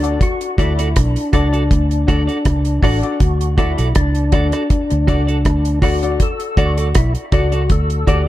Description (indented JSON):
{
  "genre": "roots reggae",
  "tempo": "80 BPM",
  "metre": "4/4",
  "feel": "straight",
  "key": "D major",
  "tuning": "A4 = 438 Hz",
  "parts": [
    { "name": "percussive tonewheel organ", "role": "melody", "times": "0.0-8.3 s", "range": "D4 to A4", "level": "-21 LUFS", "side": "left 2 dB", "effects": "chorus vibrato, slow rotary speaker, tape echo" },
    { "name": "clear baby grand piano", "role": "stabs", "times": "0.0-8.2 s", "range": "D4 to D5", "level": "-26 LUFS", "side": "left 5 dB", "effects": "none" },
    { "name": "vintage muted fingered electric bass", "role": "bass", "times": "0.0-8.3 s", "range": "A1 to D2", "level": "-17 LUFS", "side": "equal", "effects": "none" },
    { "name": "deep reggae drum kit", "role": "drums", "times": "0.0-8.3 s", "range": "hi-hat, kick drum, rim click", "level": "-17 LUFS", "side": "equal", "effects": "none" },
    { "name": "clean electric guitar", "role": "accompaniment", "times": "0.6-8.2 s", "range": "F#4 to D5", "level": "-25 LUFS", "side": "right 4 dB", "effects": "tape echo" }
  ],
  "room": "light reverb, studio ambience",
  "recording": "dark, warm production",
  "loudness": "-14 LUFS",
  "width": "side -14 dB against mid",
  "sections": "0.0-8.3 A section",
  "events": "none",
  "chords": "0.0 D"
}